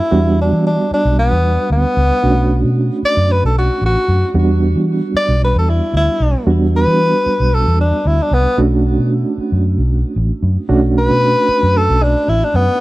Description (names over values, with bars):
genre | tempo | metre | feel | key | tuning
blues | 114 BPM | 4/4 | swing 55% on 16ths | B minor | A4 = 441 Hz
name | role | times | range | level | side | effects
mellow tenor saxophone | melody | 0.0-12.8 s | B3 to D5 | -16 LUFS | left 1 dB | tape echo
barky reed electric piano | accompaniment | 0.0-12.8 s | G3 to F#4 | -19 LUFS | right 3 dB | overdrive, fast tremolo
vintage muted fingered electric bass | bass | 0.1-12.7 s | A1 to E3 | -15 LUFS | equal | none
room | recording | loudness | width
small room ambience | dry, close 1970s-style studio recording | -12 LUFS | side -18 dB against mid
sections
0.0-12.8 A section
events
none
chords
0.1 Em7; 2.2 Bm7; 4.3 Em7; 8.6 Bm7